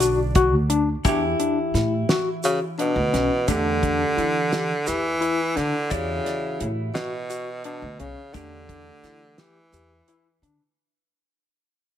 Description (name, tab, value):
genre	progressive instrumental, band music in an uneven meter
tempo	173 BPM (eighths)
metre	7/8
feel	straight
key	E dorian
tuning	A4 = 441 Hz
part	clear tenor saxophone	melody	0.0-10.4 s	B2 to D4	-25 LUFS	right 1 dB	plate reverb, tape echo
part	vintage hollow-body jazz guitar	accompaniment	0.0-10.7 s	D3 to G4	-29 LUFS	equal	double-tracked left and right, plate reverb
part	overdriven tine electric piano	arpeggios	0.0-10.6 s	C#4 to D5	-26 LUFS	left 5 dB	fast tremolo, plate reverb
part	upright bass	bass	0.0-10.6 s	B1 to E3	-27 LUFS	equal	none
part	damped 70s drum kit	drums	0.0-10.6 s	hi-hat, kick drum, snare drum	-24 LUFS	right 1 dB	none
part	tube shaker	percussion	0.0-10.6 s	none	-34 LUFS	right 7 dB	none
room	moderate studio reverb, RT60 0.7 s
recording	none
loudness	-20 LUFS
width	side -10 dB against mid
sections	0.0-1.1 A section; 1.1-10.8 B section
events	fade-out 1.1-10.8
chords	0.0 D6; 1.1 Em9; 3.5 A7sus4/E; 5.9 Em9; 8.3 A7sus4/E